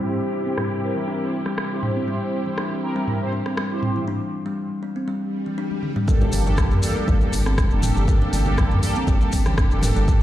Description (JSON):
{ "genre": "afro house", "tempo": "120 BPM", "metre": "4/4", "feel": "straight", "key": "G dorian", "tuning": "A4 = 443 Hz", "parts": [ { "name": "warm chamber string section", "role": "sustained chords", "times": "0.0-10.2 s", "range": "C3 to A4", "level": "-32 LUFS", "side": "left 1 dB", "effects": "vintage 12-bit sampler grit, sidechain pumping" }, { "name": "kalimba", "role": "arpeggios", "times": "0.0-10.1 s", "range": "E3 to D4", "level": "-27 LUFS", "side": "left 1 dB", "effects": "sidechain pumping, dub echo" }, { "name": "mellow synth brass", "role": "stabs", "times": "0.0-10.2 s", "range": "Bb3 to C5", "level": "-28 LUFS", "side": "right 1 dB", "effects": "chorus, phaser, sidechain pumping, dub echo" }, { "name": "afro-pop drum kit", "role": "drums", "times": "0.6-9.9 s", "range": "hi-hat, rim click, toms", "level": "-28 LUFS", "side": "right 1 dB", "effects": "none" }, { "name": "swell", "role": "sound effects", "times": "5.2-6.1 s", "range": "none", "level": "-34 LUFS", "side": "left 4 dB", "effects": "none" }, { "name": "electronic kick drum", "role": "drums", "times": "6.1-10.2 s", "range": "none", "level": "-19 LUFS", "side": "equal", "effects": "none" }, { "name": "congas", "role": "percussion", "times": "6.1-10.2 s", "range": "none", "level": "-30 LUFS", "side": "right 1 dB", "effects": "none" }, { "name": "maracas", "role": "percussion", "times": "6.1-10.2 s", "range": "none", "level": "-36 LUFS", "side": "left 5 dB", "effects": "none" }, { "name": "round analog bass", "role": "bass", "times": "6.3-10.2 s", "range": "F1 to G2", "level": "-22 LUFS", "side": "equal", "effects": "sidechain pumping" } ], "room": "light reverb, studio ambience", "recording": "played on a big sound system in a bare room, large studio reverb, low-pass filter", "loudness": "-20 LUFS", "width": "side -13 dB against mid", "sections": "0.0-6.1 A section; 6.1-10.2 B section", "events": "filter sweep on kalimba 0.0-6.1; filter sweep on analog polysynth 0.0-6.1; break 4.1-6.1; swell 5.2-6.1; drum fill 5.7-6.1; drop 6.1-10.2", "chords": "0.0 C; 6.1 Gmadd9" }